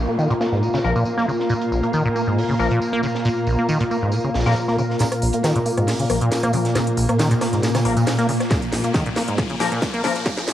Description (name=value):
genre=driving peak-time techno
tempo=137 BPM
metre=4/4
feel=straight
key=unclear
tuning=A4 = 440 Hz
part: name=acid bass, saw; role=riff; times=0.0-10.5 s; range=Bb1 to Bb3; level=-22 LUFS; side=equal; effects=vintage 12-bit sampler grit, sidechain pumping, tape echo
part: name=swarming drone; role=drone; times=0.0-10.5 s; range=Bb2 to Bb3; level=-24 LUFS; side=equal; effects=built-in reverb, sidechain pumping
part: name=downlifter and riser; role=sound effects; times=0.0-1.5, 7.0-10.5 s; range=none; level=-34 LUFS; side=left 1 dB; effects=none
part: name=airy breathy pad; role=texture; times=0.0-10.5 s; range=F4 to Bb5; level=-25 LUFS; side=left 1 dB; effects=chorus, sidechain pumping
part: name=techno drum kit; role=drums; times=0.1-10.5 s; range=hi-hat, rim click, snare drum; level=-27 LUFS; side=equal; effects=overdrive, high-pass filter on hats, low-pass filter on hats, cassette tape, high-pass filter on cymbals, low-pass filter on cymbals, high-pass filter on perc, low-pass filter on perc, high-pass filter on snare, low-pass filter on snare
part: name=crisp fusion drum kit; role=drums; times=0.2-10.5 s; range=hi-hat, snare drum, tambourine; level=-33 LUFS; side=right 1 dB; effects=sidechain pumping on hats, high-pass filter on hats, low-pass filter on hats, cassette tape, high-pass filter on snare, low-pass filter on snare, sidechain pumping on perc, high-pass filter on perc, low-pass filter on perc, high-pass filter on room, low-pass filter on room
part: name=sync-sweep polysynth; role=stabs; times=0.8-10.1 s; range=F3 to Bb4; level=-27 LUFS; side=left 6 dB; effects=chorus, sidechain pumping, tape echo
part: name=electronic kick drum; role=drums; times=8.5-10.4 s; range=none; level=-23 LUFS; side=equal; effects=overdrive, cassette tape
room=moderate spring reverb, RT60 1.6 s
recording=home recording on cassette, high-pass filter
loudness=-18 LUFS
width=side -12 dB against mid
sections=0.0-5.0 A section; 5.0-10.5 B section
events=filter sweep on acid bass 0.0-5.0, 5.0-10.5; filter sweep on analog polysynth 0.0-5.0, 5.0-10.5; build-up 5.0-10.5; drum fill 5.0-10.5; filter sweep 5.0-10.5; riser 7.0-10.5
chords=0.0 Bb5